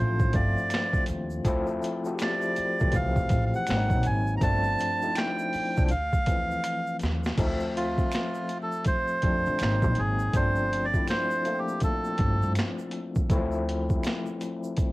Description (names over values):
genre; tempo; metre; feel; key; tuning
R&B, neo-soul; 81 BPM; 4/4; swing 62% on 16ths; D minor; A4 = 443 Hz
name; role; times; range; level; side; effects
melodica; melody; 0.0-12.5 s; F4 to A#5; -29 LUFS; right 2 dB; none
overdriven tine electric piano; accompaniment; 0.0-14.9 s; E3 to E5; -31 LUFS; left 2 dB; medium tremolo, cassette tape
upright bass; bass; 0.0-13.9 s; G1 to D3; -29 LUFS; equal; none
boom bap sampler-style drum kit; drums; 0.2-14.9 s; crash cymbal, finger snaps, hi-hat, kick drum, snare drum; -28 LUFS; equal; overdrive, cassette tape
tube shaker and finger snaps; percussion; 0.2-14.9 s; none; -46 LUFS; right 4 dB; none
room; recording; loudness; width
light reverb; home recording on cassette; -24 LUFS; side -19 dB against mid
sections
0.0-7.4 A section; 7.4-14.9 B section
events
drum fill 6.6-7.4; melodica solo 7.4-14.9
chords
0.0 G9sus4; 1.4 Dm7; 3.7 G#9; 4.4 G9sus4; 5.9 Dm9; 9.6 G#9; 10.3 G9sus4; 13.3 Dm7